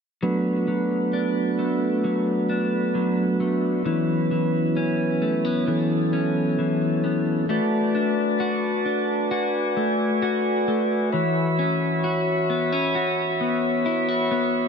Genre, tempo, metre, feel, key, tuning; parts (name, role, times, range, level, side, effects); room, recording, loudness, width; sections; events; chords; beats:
dream pop; 66 BPM; 4/4; straight; B dorian; A4 = 436 Hz
mellow tonewheel organ; sustained chords; 0.2-14.7 s; F#3 to B5; -23 LUFS; right 2 dB; slow rotary speaker
clean electric guitar; arpeggios; 0.2-14.7 s; E3 to F#4; -24 LUFS; left 3 dB; lush chorus, digital delay
moderate huge ambient reverb, RT60 4.7 s; -20 LUFS; side -6 dB against mid
0.2-7.5 A section; 7.5-14.7 B section
0.2 Bm7; 3.9 F#7sus4; 7.5 Bm7; 11.1 F#7sus4
| 0.22 1.13 2.04 2.95 | 3.86 4.77 5.68 6.59 | 7.50 8.40 9.31 10.22 | 11.13 12.04 12.95 13.86